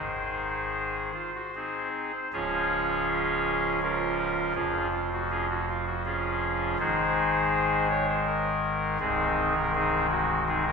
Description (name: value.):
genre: classical, chorale-style piece for pipe organ.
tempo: 81 BPM.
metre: 3/4.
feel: rubato.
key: Db major.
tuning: A4 = 440 Hz.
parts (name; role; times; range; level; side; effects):
pipe organ, soft reed; solo; 0.0-10.7 s; C1 to Db5; -25 LUFS; equal; none.
room: wet church reverb, RT60 2.5 s.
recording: recorded in a church or concert hall.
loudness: -25 LUFS.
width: side -5 dB against mid.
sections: 0.0-2.3 A section; 2.3-10.7 B section.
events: none.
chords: 0.0 Ab; 2.3 Db; 4.6 Db/F; 6.8 Ab; 9.0 Ab/C.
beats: 0.76 1.54 | 2.32 3.08 3.82 | 4.57 5.31 6.06 | 6.80 7.55 8.28 | 9.02 9.76 10.49.